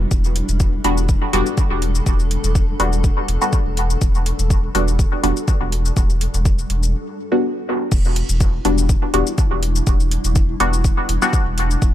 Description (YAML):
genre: dub techno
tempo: 123 BPM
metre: 4/4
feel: swing 54% on 16ths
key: E minor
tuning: A4 = 439 Hz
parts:
  - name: granular cloud pad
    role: sustained chords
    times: 0.0-11.9 s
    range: G3 to A4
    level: -29 LUFS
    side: left 1 dB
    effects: built-in reverb, sidechain pumping
  - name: warm sub bass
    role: bass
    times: 0.0-11.9 s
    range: E1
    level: -19 LUFS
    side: equal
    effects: sidechain pumping
  - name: deep house drum kit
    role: drums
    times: 0.1-11.9 s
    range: crash cymbal, hi-hat, shaker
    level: -28 LUFS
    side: left 2 dB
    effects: overdrive
  - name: electronic kick drum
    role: drums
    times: 0.1-11.9 s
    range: none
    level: -17 LUFS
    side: equal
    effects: overdrive
  - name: filtered dub chord stab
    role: stabs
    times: 0.8-11.4 s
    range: G3 to F#4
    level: -22 LUFS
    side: left 1 dB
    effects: chorus, phaser, sidechain pumping, dub echo
room: little or no reverb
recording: dark, warm production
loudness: -16 LUFS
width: side -12 dB against mid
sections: 0.0-7.9 A section; 7.9-11.9 A section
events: break 6.9-7.9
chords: 0.0 Em7